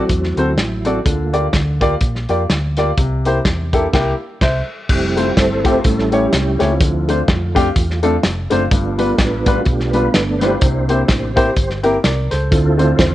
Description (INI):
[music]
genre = uptempo gospel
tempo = 126 BPM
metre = 4/4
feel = swing 57% on 8ths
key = unclear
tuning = A4 = 440 Hz
[part]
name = mellow tonewheel organ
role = sustained chords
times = 0.0-13.1 s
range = D3 to C5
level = -20 LUFS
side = right 2 dB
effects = slow rotary speaker, chorus vibrato
[part]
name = hollow-body short-scale fingered electric bass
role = bass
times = 0.0-13.1 s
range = F1 to F2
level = -20 LUFS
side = equal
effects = none
[part]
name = warm soul drum kit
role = drums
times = 0.1-13.1 s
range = crash cymbal, hi-hat, kick drum, snare drum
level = -17 LUFS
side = equal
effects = none
[part]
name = warm baby grand piano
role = accompaniment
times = 0.4-13.1 s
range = G2 to E5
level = -18 LUFS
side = left 2 dB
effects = none
[sound]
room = light reverb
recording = worn, warbling old tape, cassette tape, warbly pitch drift, nothing above 10.3 kHz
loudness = -14 LUFS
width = side -14 dB against mid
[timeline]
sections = 0.0-4.9 A section; 4.9-13.1 B section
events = tonewheel organ solo 0.0-4.9, 4.9-13.1; band accent 3.9-4.9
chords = 0.0 D7; 1.1 Gm7/D; 3.0 C7; 4.9 Fmaj7; 5.9 A7; 6.8 Dm7; 8.7 G7; 10.6 C7; 12.5 Dm7